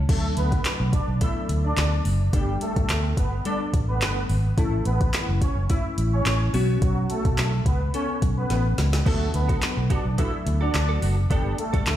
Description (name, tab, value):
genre	dance-pop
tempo	107 BPM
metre	4/4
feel	straight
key	D major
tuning	A4 = 444 Hz
part	vintage muted fingered electric bass	bass	0.0-12.0 s	F#1 to B2	-23 LUFS	equal	sidechain pumping
part	filtered supersaw swell	melody	0.1-12.0 s	F#3 to E5	-30 LUFS	right 1 dB	sidechain pumping, ping-pong delay
part	glassy digital keys	accompaniment	0.1-12.0 s	F#3 to A4	-32 LUFS	left 4 dB	chorus
part	smooth R&B drum kit	drums	0.1-12.0 s	crash cymbal, handclaps, hi-hat, kick drum, snare drum	-25 LUFS	equal	none
part	direct-recorded clean electric guitar	riff	9.1-11.9 s	B3 to A4	-34 LUFS	right 6 dB	ensemble chorus
room	digital ambience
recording	played on a big sound system in a bare room, large studio reverb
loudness	-21 LUFS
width	side -12 dB against mid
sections	0.1-12.0 A section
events	drop 0.1-12.0; drum fill 8.5-9.1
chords	0.1 D6; 2.3 Gadd9; 4.6 A; 6.5 Bsus2; 9.1 D6; 11.3 Gadd9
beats	| 0.09 0.65 1.21 1.77 | 2.33 2.89 3.46 4.01 | 4.58 5.14 5.70 6.26 | 6.82 7.38 7.94 8.50 | 9.06 9.62 10.18 10.74 | 11.30 11.87